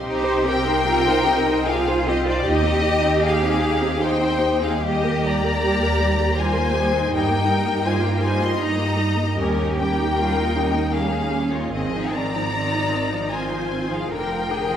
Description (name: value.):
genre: classical, slow romantic movement for string orchestra.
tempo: 66-82 BPM.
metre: 3/4.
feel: rubato.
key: C minor.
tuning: A4 = 440 Hz.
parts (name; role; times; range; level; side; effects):
rich symphonic violin section; melody; 0.0-14.8 s; Bb4 to C6; -24 LUFS; left 4 dB; none.
clear symphonic violin section; second line; 0.0-14.8 s; Db4 to Eb5; -26 LUFS; left 3 dB; none.
rich studio viola section; accompaniment; 0.0-14.8 s; D3 to C5; -25 LUFS; right 1 dB; none.
rich symphonic cello section; bass; 0.0-14.8 s; C4 to Bb4; -26 LUFS; right 2 dB; none.
rich symphonic double bass section; bass; 0.0-14.8 s; F1 to G2; -25 LUFS; right 2 dB; none.
room: wet scoring stage reverb, RT60 1.5 s.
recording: heard from further back in the room.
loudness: -18 LUFS.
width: side -9 dB against mid.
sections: 0.0-14.8 A section.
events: none.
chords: 0.0 Cm; 2.4 Cm/Eb; 4.8 Eb; 7.1 Eb/G; 9.4 Eb7; 11.7 Ab6; 14.1 Ddim/F.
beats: | 0.01 0.87 1.67 | 2.45 3.23 4.01 | 4.82 5.64 6.38 | 7.12 7.85 8.59 | 9.39 10.20 10.94 | 11.72 12.55 13.33 | 14.11.